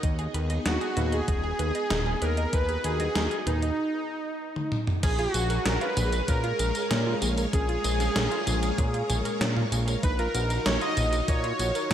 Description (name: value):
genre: synthwave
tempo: 96 BPM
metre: 4/4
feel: straight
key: unclear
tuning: A4 = 440 Hz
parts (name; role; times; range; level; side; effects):
- string machine, full ensemble; sustained chords; 0.0-11.9 s; Ab3 to F5; -35 LUFS; equal; ensemble chorus, sidechain pumping
- analog pluck; arpeggios; 0.0-11.9 s; Db4 to Eb5; -36 LUFS; right 3 dB; chorus, phaser, tape echo
- fat analog bass; bass; 0.0-11.9 s; Eb1 to Bb2; -28 LUFS; equal; tube saturation, sidechain pumping
- electronic kick drum; drums; 0.0-11.4 s; none; -27 LUFS; equal; none
- gated 80s digital drum machine; drums; 0.0-11.9 s; crash cymbal, hi-hat, snare drum, tambourine, toms; -30 LUFS; equal; gated reverb, gated reverb snare
- soft supersaw; melody; 0.7-11.9 s; Eb4 to Eb5; -29 LUFS; equal; cassette tape, tape echo
room: light reverb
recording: none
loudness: -24 LUFS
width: side -10 dB against mid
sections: 0.0-5.0 A section; 5.0-11.9 B section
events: break 3.8-5.0; drum fill 4.6-5.0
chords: 0.0 Abm/Eb; 5.0 Bbm7; 10.0 Ebmadd9/Bb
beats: | 0.03 0.66 1.28 1.91 | 2.53 3.16 3.78 4.41 | 5.03 5.66 6.28 6.91 | 7.53 8.16 8.78 9.41 | 10.03 10.66 11.28 11.91